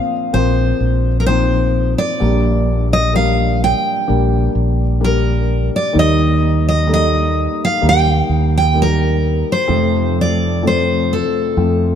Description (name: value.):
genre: folk.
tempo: 64 BPM.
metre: 4/4.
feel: straight.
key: unclear.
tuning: A4 = 439 Hz.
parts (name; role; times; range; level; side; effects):
picked steel-string acoustic guitar; melody; 0.0-12.0 s; A4 to G5; -18 LUFS; equal; none.
felt-muted upright piano; accompaniment; 0.0-12.0 s; F1 to C5; -19 LUFS; left 2 dB; none.
mellow fretless electric bass; bass; 0.3-11.9 s; Bb1 to F2; -16 LUFS; right 1 dB; analog chorus.
room: moderate plate reverb, RT60 2.8 s.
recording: heard from further back in the room.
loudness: -13 LUFS.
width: side -8 dB against mid.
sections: 0.0-12.0 A section.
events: none.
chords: 0.0 Bbsus2; 2.2 Gm/Bb; 6.0 Eb; 9.7 F.